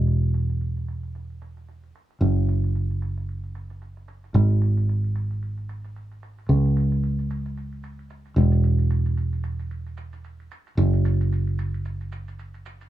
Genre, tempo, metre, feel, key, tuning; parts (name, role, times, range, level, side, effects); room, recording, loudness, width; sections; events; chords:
sunset chillout; 112 BPM; 4/4; swing 57% on 16ths; A4 = 440 Hz
fingered electric bass; bass; 0.0-12.9 s; E1 to C#2; -22 LUFS; right 1 dB
shaker; drums; 0.1-12.9 s; -52 LUFS; right 3 dB; overdrive, low-pass filter on hats, low-pass filter on perc, low-pass filter on snare, low-pass filter on room
little or no reverb; -21 LUFS; side -14 dB against mid
0.0-12.9 A section